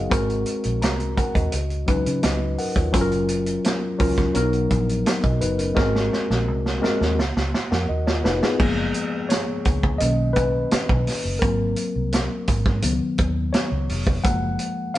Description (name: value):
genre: lush 1970s-style soul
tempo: 85 BPM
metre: 4/4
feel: straight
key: F# major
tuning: A4 = 440 Hz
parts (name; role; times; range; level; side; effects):
- tine electric piano; accompaniment; 0.0-15.0 s; D#3 to A#5; -24 LUFS; left 2 dB; none
- vintage muted fingered electric bass; bass; 0.0-14.6 s; E#1 to C#3; -25 LUFS; equal; none
- vintage drum kit; drums; 0.1-15.0 s; crash cymbal, hi-hat, kick drum, snare drum; -23 LUFS; right 1 dB; none
room: light reverb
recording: band playing live in one room, nothing above 10.6 kHz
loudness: -19 LUFS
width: side -14 dB against mid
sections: 0.0-8.6 A section; 8.6-15.0 B section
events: drum fill 5.8-8.6; tine electric piano solo 8.6-15.0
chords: 0.1 G#9; 1.5 C#9sus4; 2.9 F#maj7; 4.4 Bmaj7; 5.8 G#9; 7.2 C#sus2; 8.6 F#maj7; 10.0 Bmaj7; 11.4 G#9; 12.8 C#9sus4; 14.2 F#maj7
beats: | 0.11 0.82 1.52 2.23 | 2.94 3.65 4.35 5.06 | 5.77 6.47 7.18 7.89 | 8.59 9.30 10.01 10.71 | 11.42 12.13 12.83 13.54 | 14.25 14.95